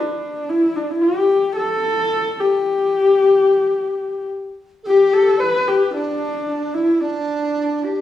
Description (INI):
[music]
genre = mongolian traditional, Mongolian folk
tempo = 110 BPM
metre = 4/4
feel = straight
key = G gong mode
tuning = A4 = 442 Hz
[part]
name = warm horsehead fiddle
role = melody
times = 0.0-8.0 s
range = D4 to B4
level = -16 LUFS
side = left 2 dB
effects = none
[part]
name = large dizi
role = second line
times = 4.8-8.0 s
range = D4 to D5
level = -20 LUFS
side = equal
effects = none
[sound]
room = wet large studio reverb, RT60 1.0 s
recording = band playing live in one room, small room ambience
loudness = -16 LUFS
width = side -12 dB against mid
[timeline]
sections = 0.0-4.8 A section; 4.8-8.0 B section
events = none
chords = none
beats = | 0.49 1.04 1.58 2.13 | 2.67 3.21 3.75 4.30 | 4.84 5.38 5.92 6.47 | 7.01 7.55